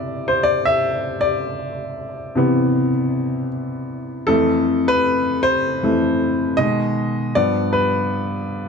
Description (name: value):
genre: R&B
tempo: 78 BPM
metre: 4/4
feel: swing 59% on 16ths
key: C major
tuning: A4 = 441 Hz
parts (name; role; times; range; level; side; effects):
- warm baby grand piano; solo; 0.0-8.7 s; F2 to G5; -17 LUFS; left 1 dB; none
room: moderate small room ambience, RT60 0.5 s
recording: dark, warm production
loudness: -17 LUFS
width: side -5 dB against mid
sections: 0.0-8.7 A section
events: grand piano solo 0.0-8.7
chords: 0.0 Cmaj9; 4.3 Fmaj7; 6.6 B6; 7.3 G7